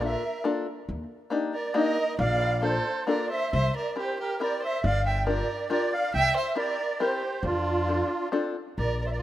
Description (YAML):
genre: musette waltz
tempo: 137 BPM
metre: 3/4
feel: rubato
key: F major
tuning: A4 = 443 Hz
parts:
  - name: musette accordion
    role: melody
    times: 0.0-9.2 s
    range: F4 to G5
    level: -29 LUFS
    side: right 2 dB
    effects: none
  - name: rich violin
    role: second line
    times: 0.0-9.2 s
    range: D4 to E5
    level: -30 LUFS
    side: right 2 dB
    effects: none
  - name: open-back banjo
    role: accompaniment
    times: 0.0-8.6 s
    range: Bb3 to Bb4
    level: -29 LUFS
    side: left 4 dB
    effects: none
  - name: upright bass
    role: bass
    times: 0.0-9.2 s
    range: G1 to F2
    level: -28 LUFS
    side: equal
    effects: none
room: moderate lush hall reverb, RT60 2.3 s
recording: rough home demo mix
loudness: -24 LUFS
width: side -13 dB against mid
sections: 0.0-8.8 A section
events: none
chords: 0.0 Bbmaj7; 0.9 Ebmaj7; 2.2 Bbmaj7; 3.5 C7; 4.8 Gm7; 6.1 C7; 7.4 F6